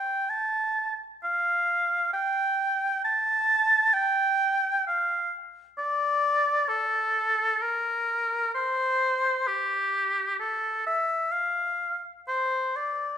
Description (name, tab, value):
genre	classical, baroque-style fantasia for unaccompanied oboe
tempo	65 BPM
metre	3/4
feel	rubato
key	F major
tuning	A4 = 440 Hz
part	clear oboe	solo	0.0-13.2 s	G4 to A5	-24 LUFS	equal	none
room	moderate recital hall reverb, RT60 1.4 s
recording	minimal, uncompressed stereo recording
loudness	-24 LUFS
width	side -9 dB against mid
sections	0.0-13.2 A section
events	none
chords	none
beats	| 0.31 1.23 2.13 | 3.03 3.94 4.85 | 5.76 6.67 7.60 | 8.54 9.47 10.40 | 11.33 12.27